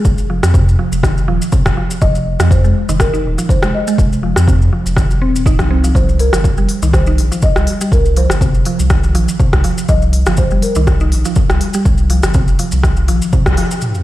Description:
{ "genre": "afro house", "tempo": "122 BPM", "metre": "4/4", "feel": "swing 55% on 16ths", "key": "unclear", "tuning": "A4 = 440 Hz", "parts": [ { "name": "folk marimba with medium mallets", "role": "melody", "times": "0.0-13.3 s", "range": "Ab4 to Eb5", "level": "-22 LUFS", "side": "left 1 dB", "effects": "dub echo" }, { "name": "mallet-like synth pluck", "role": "arpeggios", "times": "0.0-13.7 s", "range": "C3 to Eb4", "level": "-19 LUFS", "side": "equal", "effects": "chorus, sidechain pumping, dub echo" }, { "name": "electronic kick drum", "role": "drums", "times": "0.0-13.6 s", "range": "none", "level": "-14 LUFS", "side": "equal", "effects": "none" }, { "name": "maracas", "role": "percussion", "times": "0.0-14.0 s", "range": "none", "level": "-29 LUFS", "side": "left 2 dB", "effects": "none" }, { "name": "round analog bass", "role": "bass", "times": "0.1-13.6 s", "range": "Eb1 to F2", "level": "-15 LUFS", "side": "equal", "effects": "sidechain pumping" }, { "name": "afro-pop drum kit", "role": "drums", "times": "0.4-13.7 s", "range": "hi-hat, rim click", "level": "-21 LUFS", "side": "left 1 dB", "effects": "low-pass filter on snare, low-pass filter on toms, low-pass filter on hats, low-pass filter on room" }, { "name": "warm analog pad", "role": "sustained chords", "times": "13.8-14.0 s", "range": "F4 to G5", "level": "-40 LUFS", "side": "equal", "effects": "none" }, { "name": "sub drop", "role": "sound effects", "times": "13.8-14.0 s", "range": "none", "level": "-16 LUFS", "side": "equal", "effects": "none" } ], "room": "light reverb", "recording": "played on a big sound system in a bare room, stone room reverb", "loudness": "-11 LUFS", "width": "side -15 dB against mid", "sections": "0.0-13.8 A section", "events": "band accent 13.5; impact 13.8", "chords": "0.0 Fm7; 6.0 C7(no3)" }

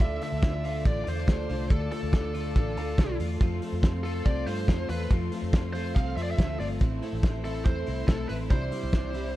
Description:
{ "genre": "jangly indie pop", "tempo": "141 BPM", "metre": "4/4", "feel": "straight", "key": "unclear", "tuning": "A4 = 440 Hz", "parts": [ { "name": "bluesy overdriven lead guitar", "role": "melody", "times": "0.0-9.4 s", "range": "A4 to F5", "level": "-36 LUFS", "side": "equal", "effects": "distortion" }, { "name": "picked plugged-in twelve-string acoustic guitar", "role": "accompaniment", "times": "0.0-9.4 s", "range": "A2 to F4", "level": "-37 LUFS", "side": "right 6 dB", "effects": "none" }, { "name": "rich studio string section", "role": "sustained chords", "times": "0.0-9.4 s", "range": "F4 to D6", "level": "-43 LUFS", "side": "left 1 dB", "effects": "none" }, { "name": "twelve-string electric guitar", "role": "arpeggios", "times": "0.0-9.4 s", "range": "A2 to F4", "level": "-36 LUFS", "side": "left 6 dB", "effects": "none" }, { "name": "vintage muted fingered electric bass", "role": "bass", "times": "0.0-9.3 s", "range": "G1 to G2", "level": "-32 LUFS", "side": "equal", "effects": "none" }, { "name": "cloth-damped thuddy drum kit", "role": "drums", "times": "0.0-9.2 s", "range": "hi-hat, kick drum, ride cymbal, snare drum", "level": "-25 LUFS", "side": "equal", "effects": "none" } ], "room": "small room ambience", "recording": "dark, warm production", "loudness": "-25 LUFS", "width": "side -15 dB against mid", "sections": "0.0-9.4 A section", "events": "none", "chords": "0.0 Dm; 3.4 F; 6.8 Am; 8.5 Cadd9" }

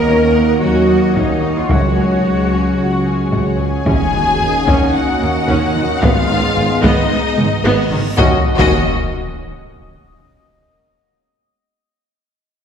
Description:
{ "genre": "cinematic, hybrid orchestral and electronic film score", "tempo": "111 BPM", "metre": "4/4", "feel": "straight", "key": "Eb minor", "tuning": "A4 = 442 Hz", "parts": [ { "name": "warm symphonic violin section", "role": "melody", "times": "0.0-8.9 s", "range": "Eb5 to Ab5", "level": "-21 LUFS", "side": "left 4 dB", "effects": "none" }, { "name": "warm symphonic violin section", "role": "second line", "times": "0.0-8.9 s", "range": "Eb4 to Eb5", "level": "-25 LUFS", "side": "left 3 dB", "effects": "none" }, { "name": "warm symphonic viola section", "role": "accompaniment", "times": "0.0-8.9 s", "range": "Eb3 to Gb4", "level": "-22 LUFS", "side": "right 1 dB", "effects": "none" }, { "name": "analog drone", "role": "sustained chords", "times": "0.0-8.5 s", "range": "Ab3 to Eb5", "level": "-23 LUFS", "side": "left 1 dB", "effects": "chorus" }, { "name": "mellow French horn section", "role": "sustained chords", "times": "0.0-8.4 s", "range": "Eb3 to Db4", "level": "-20 LUFS", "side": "left 1 dB", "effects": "none" }, { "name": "rich symphonic cello section", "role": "bass", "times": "0.0-8.9 s", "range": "Eb2 to Bb4", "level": "-21 LUFS", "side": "right 1 dB", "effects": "none" }, { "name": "warm symphonic double bass section", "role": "bass", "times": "0.1-8.9 s", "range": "Ab1 to Eb2", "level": "-22 LUFS", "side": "right 2 dB", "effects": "none" }, { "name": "warm tuba", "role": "bass", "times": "0.1-8.8 s", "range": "Ab1 to Eb2", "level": "-23 LUFS", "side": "right 3 dB", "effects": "none" }, { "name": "taiko ensemble", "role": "drums", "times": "1.2-9.6 s", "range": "none", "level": "-19 LUFS", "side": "left 1 dB", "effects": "none" }, { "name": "impact, reverse cymbal and sub drop", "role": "sound effects", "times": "3.9-10.3 s", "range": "none", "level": "-25 LUFS", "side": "equal", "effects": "none" } ], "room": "wet scoring stage reverb, RT60 1.8 s", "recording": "heard from further back in the room", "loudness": "-12 LUFS", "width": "side -8 dB against mid", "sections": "0.0-3.9 A section; 3.9-8.2 B section; 8.2-10.3 C section", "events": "impact 3.9-6.0, 8.2-10.3; reverse cymbal 7.8-8.2", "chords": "0.0 Ebm7; 1.7 Dbsus4; 3.9 Ebm7; 6.0 Abm; 8.2 Ebm7" }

